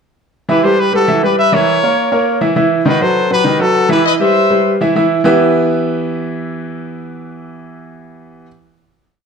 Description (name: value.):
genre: latin.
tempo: 202 BPM.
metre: 4/4.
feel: straight.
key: E harmonic minor.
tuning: A4 = 440 Hz.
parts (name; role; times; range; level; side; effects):
clear trumpet section; melody; 0.5-4.8 s; F#4 to E5; -14 LUFS; left 2 dB; none.
clear grand piano; accompaniment; 0.5-8.5 s; D#3 to E5; -13 LUFS; right 1 dB; none.
room: moderate large studio reverb, RT60 1.2 s.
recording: none.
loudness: -11 LUFS.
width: side -6 dB against mid.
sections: 0.5-5.2 A section; 5.2-7.6 final chord.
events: none.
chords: 0.5 Emadd9; 1.7 A#dim/E; 2.9 B; 4.1 Em.